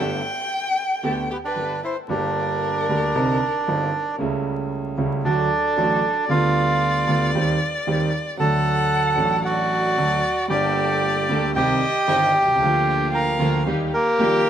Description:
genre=tango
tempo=114 BPM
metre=4/4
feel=rubato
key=unclear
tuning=A4 = 441 Hz
part: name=warm violin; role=second line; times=0.0-14.5 s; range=G4 to G5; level=-26 LUFS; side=left 2 dB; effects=none
part: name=warm grand piano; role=accompaniment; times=0.0-14.4 s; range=G1 to A4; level=-23 LUFS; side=right 2 dB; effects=none
part: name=dark studio string section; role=stabs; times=0.0-1.8, 10.5-14.4 s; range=D3 to A4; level=-30 LUFS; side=right 2 dB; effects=none
part: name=bandoneon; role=melody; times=1.3-14.5 s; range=Bb3 to Bb5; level=-21 LUFS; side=right 2 dB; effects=none
room=moderate plate reverb, RT60 3.4 s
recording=minimal, uncompressed stereo recording, vinyl crackle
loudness=-19 LUFS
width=side -9 dB against mid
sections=0.0-2.1 A section; 2.1-14.5 B section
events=violin solo 0.0-2.1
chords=0.0 Gadd9; 2.1 Gm; 3.1 Cmadd9; 4.2 A7/C#; 5.2 D; 6.3 G7/D; 7.3 Cm/Eb; 8.4 D; 10.5 Gmadd9; 11.6 Cm; 12.6 Bb/D; 13.7 Eb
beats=0.50 1.03 1.56 | 2.09 2.62 3.15 3.67 | 4.20 4.72 5.25 5.77 | 6.29 6.82 7.34 7.87 | 8.39 8.91 9.44 9.97 | 10.50 11.03 11.56 12.09 | 12.61 13.14 13.66 14.19

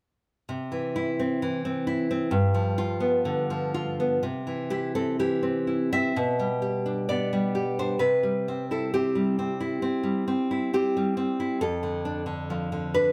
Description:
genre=romantic piece for solo classical guitar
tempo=66 BPM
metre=4/4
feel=rubato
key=C major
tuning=A4 = 441 Hz
part: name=nylon-string guitar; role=solo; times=0.5-13.1 s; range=F2 to E5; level=-27 LUFS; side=equal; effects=none
room=light reverb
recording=none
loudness=-27 LUFS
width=mono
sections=0.5-4.2 A section; 4.2-13.1 B section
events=none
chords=0.5 C; 2.3 G7; 4.2 C; 6.1 G/B; 8.0 C; 11.6 Dm/F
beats=| 0.49 1.41 2.31 3.24 | 4.21 5.16 6.14 7.07 | 8.00 8.90 9.81 10.72 | 11.61 12.51

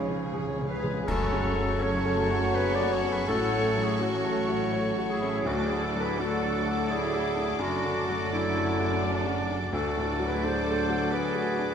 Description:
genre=classical, romantic movement for piano and orchestra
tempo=83 BPM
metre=3/4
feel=uneven beats, rubato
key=F# minor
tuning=A4 = 440 Hz
part: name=clear baby grand piano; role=melody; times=0.0-11.7 s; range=C#2 to D5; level=-31 LUFS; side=left 1 dB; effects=none
part: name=rich symphonic violin section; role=melody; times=0.0-11.7 s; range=C#5 to D6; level=-39 LUFS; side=left 1 dB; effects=none
part: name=clear symphonic violin section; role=second line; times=0.0-11.7 s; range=F#4 to A4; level=-39 LUFS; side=left 2 dB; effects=none
part: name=mellow flute section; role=second line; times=0.0-11.7 s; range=C#4 to E#5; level=-36 LUFS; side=right 3 dB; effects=none
part: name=mellow oboe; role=second line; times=0.0-11.7 s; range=E4 to D5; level=-38 LUFS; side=equal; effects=none
part: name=warm clarinet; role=second line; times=0.0-11.7 s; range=E4 to D5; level=-33 LUFS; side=left 1 dB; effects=none
part: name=mellow bassoon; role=accompaniment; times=0.0-0.7 s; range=C#3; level=-41 LUFS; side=right 4 dB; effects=none
part: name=warm studio viola section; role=accompaniment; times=0.0-11.7 s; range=A3 to G#4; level=-38 LUFS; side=right 1 dB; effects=none
part: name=dark French horn section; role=sustained chords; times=0.0-11.7 s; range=G#2 to F#4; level=-34 LUFS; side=left 5 dB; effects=none
part: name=rich symphonic cello section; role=bass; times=0.0-11.7 s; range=D2 to E#3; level=-37 LUFS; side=right 2 dB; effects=none
part: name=rich symphonic double bass section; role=bass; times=0.0-11.7 s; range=F#1 to D2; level=-35 LUFS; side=right 3 dB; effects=none
part: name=timpani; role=percussion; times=0.0-1.1 s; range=C#3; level=-37 LUFS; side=equal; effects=none
part: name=mellow trombone section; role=sustained chords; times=1.1-11.7 s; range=F#2 to F#3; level=-39 LUFS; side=right 5 dB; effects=none
part: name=clear trumpet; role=stabs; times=1.1-11.7 s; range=C#5 to D5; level=-36 LUFS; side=right 2 dB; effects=none
part: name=clash cymbals and concert bass drum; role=percussion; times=1.1-2.5 s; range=none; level=-37 LUFS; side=equal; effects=none
room=wet scoring stage reverb, RT60 1.5 s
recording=none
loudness=-25 LUFS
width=side -7 dB against mid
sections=0.0-1.1 A section; 1.1-11.7 B section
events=timpani fill 0.0-1.1; band accent 1.1-1.8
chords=0.0 C#; 1.1 F#m; 3.3 F#m/A; 5.5 D; 7.6 D/F#; 9.7 D7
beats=0.33 | 1.07 1.81 2.56 | 3.29 4.01 4.74 | 5.46 6.19 6.90 | 7.62 8.34 9.04 | 9.74 10.44 11.12

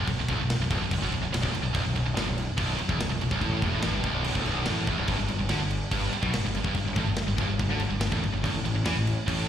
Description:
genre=heavy metal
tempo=144 BPM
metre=4/4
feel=straight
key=unclear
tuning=A4 = 440 Hz
part: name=heavy high-gain guitar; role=riff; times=0.0-9.5 s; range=B1 to E3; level=-31 LUFS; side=right 8 dB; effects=distortion, slapback echo
part: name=tight distorted guitar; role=riff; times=0.0-9.5 s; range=B1 to E3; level=-31 LUFS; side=left 7 dB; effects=distortion, slapback echo
part: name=fuzz fingered electric bass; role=bass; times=0.0-9.5 s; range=B0 to E2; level=-30 LUFS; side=equal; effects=overdrive
part: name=tight metal drum kit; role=drums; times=0.1-9.4 s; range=crash cymbal, kick drum, snare drum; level=-31 LUFS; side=equal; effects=none
room=studio ambience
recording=live gig heard through the venue's PA, recital hall reverb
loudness=-25 LUFS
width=side -10 dB against mid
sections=0.0-9.5 A section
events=none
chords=0.0 N.C.; 5.1 G5; 8.4 A5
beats=| 0.07 0.49 0.91 1.33 | 1.75 2.17 2.58 3.00 | 3.42 3.84 4.26 4.67 | 5.09 5.51 5.93 6.35 | 6.77 7.19 7.60 8.02 | 8.44 8.86 9.28

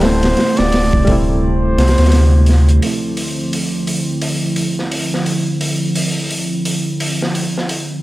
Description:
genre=trip hop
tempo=86 BPM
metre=4/4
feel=swing 60% on 16ths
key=D minor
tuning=A4 = 442 Hz
part: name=trumpet with bucket mute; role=melody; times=0.0-2.4 s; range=C5 to D5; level=-22 LUFS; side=equal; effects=dub echo
part: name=barky reed electric piano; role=accompaniment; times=0.0-8.0 s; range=D2 to E4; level=-22 LUFS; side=equal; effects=tremolo, vintage 12-bit sampler grit, tape echo
part: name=warbly tape-like pad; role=sustained chords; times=0.0-8.0 s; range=C3 to G4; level=-20 LUFS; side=right 1 dB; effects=chorus, built-in reverb
part: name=dark detuned saw bass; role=bass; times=0.0-2.8 s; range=D1 to D2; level=-13 LUFS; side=equal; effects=none
part: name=crunchy breakbeat drum kit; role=drums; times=0.0-7.9 s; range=hi-hat, kick drum, snare drum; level=-20 LUFS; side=equal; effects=high-pass filter on kick, high-pass filter on hats, high-pass filter on snare, high-pass filter on room
room=studio reverb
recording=none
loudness=-13 LUFS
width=side -17 dB against mid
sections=0.0-2.8 A section; 2.8-8.0 B section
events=none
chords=0.0 Am7/D; 2.8 Dm9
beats=| 0.02 0.72 1.42 2.12 | 2.81 3.51 4.21 4.91 | 5.61 6.30 7.00 7.70

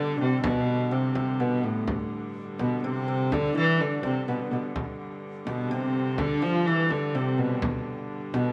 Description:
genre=medieval dance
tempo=125 BPM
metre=3/4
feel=straight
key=G mixolydian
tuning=A4 = 439 Hz
part: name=rich viola da gamba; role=melody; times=0.0-8.5 s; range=A2 to F3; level=-28 LUFS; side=equal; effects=none
part: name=bright bass recorder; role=second line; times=0.0-8.5 s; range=B3 to F4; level=-38 LUFS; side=equal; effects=none
part: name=lute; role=second line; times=0.0-8.5 s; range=A2 to F3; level=-37 LUFS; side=equal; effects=none
part: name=dark hurdy-gurdy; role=drone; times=0.0-8.5 s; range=G2 to D3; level=-39 LUFS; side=equal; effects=none
part: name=frame drum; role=percussion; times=0.4-8.5 s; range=none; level=-35 LUFS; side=equal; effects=none
room=light reverb, small room ambience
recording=none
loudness=-27 LUFS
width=mono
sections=0.0-8.5 A section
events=none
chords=none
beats=| 0.43 0.91 1.39 | 1.87 2.35 2.83 | 3.31 3.79 4.27 | 4.75 5.23 5.71 | 6.19 6.67 7.14 | 7.62 8.10

